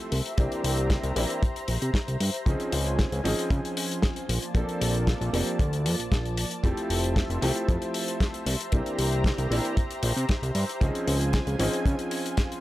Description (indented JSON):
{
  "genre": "nu-disco, nu disco",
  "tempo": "115 BPM",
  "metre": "4/4",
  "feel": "straight",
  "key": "unclear",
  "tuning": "A4 = 440 Hz",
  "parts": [
    { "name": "clear baby grand piano", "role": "accompaniment", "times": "0.0-12.6 s", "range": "E3 to A4", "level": "-31 LUFS", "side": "equal", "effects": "sidechain pumping, analog delay" },
    { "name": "lush unison pad", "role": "sustained chords", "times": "0.0-12.6 s", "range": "F3 to Bb5", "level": "-34 LUFS", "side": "equal", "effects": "chorus, sidechain pumping" },
    { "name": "fat analog bass", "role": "bass", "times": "0.1-12.0 s", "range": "F1 to Db3", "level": "-27 LUFS", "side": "equal", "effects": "sidechain pumping" },
    { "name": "damped 70s drum kit", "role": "drums", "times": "0.1-12.6 s", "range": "hi-hat, snare drum", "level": "-32 LUFS", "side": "left 2 dB", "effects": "none" },
    { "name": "kick drum", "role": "drums", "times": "0.4-12.5 s", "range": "none", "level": "-25 LUFS", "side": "equal", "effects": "none" }
  ],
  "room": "small room ambience",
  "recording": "dry, gritty hardware recording",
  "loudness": "-24 LUFS",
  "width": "side -16 dB against mid",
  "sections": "0.0-12.6 A section",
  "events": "none",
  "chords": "0.1 C7; 2.5 Dbmaj7; 4.3 Bbmaj7; 6.6 Fmaj7; 8.5 C7; 10.8 Dbmaj7",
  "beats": "| 0.38 0.90 1.42 1.95 | 2.47 2.99 3.51 4.03 | 4.55 5.08 5.60 6.12 | 6.64 7.16 7.68 8.21 | 8.73 9.25 9.77 10.29 | 10.81 11.34 11.86 12.38"
}